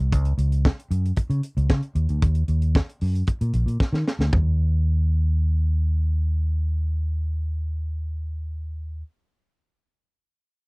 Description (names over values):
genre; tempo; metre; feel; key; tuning
disco; 114 BPM; 4/4; straight; Eb minor; A4 = 440 Hz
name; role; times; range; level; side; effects
fingered electric bass; bass; 0.0-9.0 s; Bb1 to Eb3; -21 LUFS; equal; none
tight funk drum kit; drums; 0.1-4.5 s; hi-hat, kick drum, snare drum, toms; -21 LUFS; equal; none
room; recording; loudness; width
little or no reverb; dry, close 1970s-style studio recording; -21 LUFS; side -32 dB against mid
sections
0.0-4.3 A section; 4.3-8.5 B section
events
drum fill 3.8-4.3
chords
none